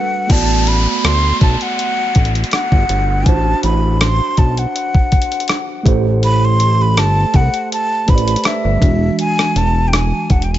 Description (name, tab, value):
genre	contemporary R&B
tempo	81 BPM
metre	4/4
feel	swing 54% on 16ths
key	unclear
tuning	A4 = 440 Hz
part	breathy jazz flute	melody	0.0-10.6 s	E5 to C6	-19 LUFS	equal	tape echo
part	mellow tine electric piano	accompaniment	0.0-10.6 s	E3 to D5	-21 LUFS	right 4 dB	slow stereo tremolo
part	swell and downlifter	sound effects	0.0-6.2 s	none	-25 LUFS	equal	none
part	fat analog bass	bass	0.3-10.6 s	E1 to D2	-15 LUFS	equal	none
part	crisp 8-bit digital drum machine	drums	0.3-10.6 s	crash cymbal, hi-hat, kick drum, rim click	-15 LUFS	equal	none
room	little or no reverb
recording	nothing above 7.8 kHz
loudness	-12 LUFS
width	side -13 dB against mid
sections	0.3-10.6 A section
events	swell 0.0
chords	0.3 Gmaj9/A; 3.3 D7/A; 5.9 Am9; 8.8 E9